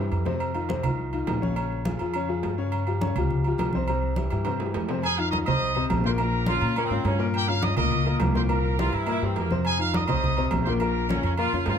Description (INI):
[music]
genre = latin, salsa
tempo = 208 BPM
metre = 4/4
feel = straight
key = F minor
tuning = A4 = 440 Hz
[part]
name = clear concert grand piano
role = accompaniment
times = 0.0-11.8 s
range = Bb2 to Db5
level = -28 LUFS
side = left 6 dB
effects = none
[part]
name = upright bass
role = bass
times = 0.0-11.8 s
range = Bb1 to Bb2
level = -27 LUFS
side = equal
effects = none
[part]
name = agogo bells and timbales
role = percussion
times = 0.1-11.8 s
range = none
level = -32 LUFS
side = right 6 dB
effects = none
[part]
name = congas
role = percussion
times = 0.1-11.8 s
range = none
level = -31 LUFS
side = right 1 dB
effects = none
[part]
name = bright trumpet section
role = melody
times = 5.0-11.3 s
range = G4 to Eb6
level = -28 LUFS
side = right 1 dB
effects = none
[part]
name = clear saxophone section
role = second line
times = 6.5-11.8 s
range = Bb3 to F4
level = -29 LUFS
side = right 3 dB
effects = none
[sound]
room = light reverb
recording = close, detailed microphones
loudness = -23 LUFS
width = side -8 dB against mid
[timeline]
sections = 0.0-5.0 A section; 5.0-11.8 B section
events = drum fill 0.0-0.4, 4.5-5.0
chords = 0.4 F5; 1.6 Bbm7; 2.7 Dbmaj7#11; 3.9 C; 5.0 Fm7; 6.2 Bbm; 7.3 Gm7b5; 8.5 C7; 9.7 Fm7; 10.8 Bbm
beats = 0.12 | 0.41 0.70 0.99 1.28 | 1.57 1.86 2.15 2.44 | 2.72 3.01 3.30 3.59 | 3.88 4.17 4.46 4.75 | 5.04 5.33 5.62 5.90 | 6.19 6.48 6.77 7.06 | 7.35 7.63 7.92 8.21 | 8.50 8.79 9.08 9.37 | 9.65 9.94 10.23 10.52 | 10.81 11.10 11.39 11.68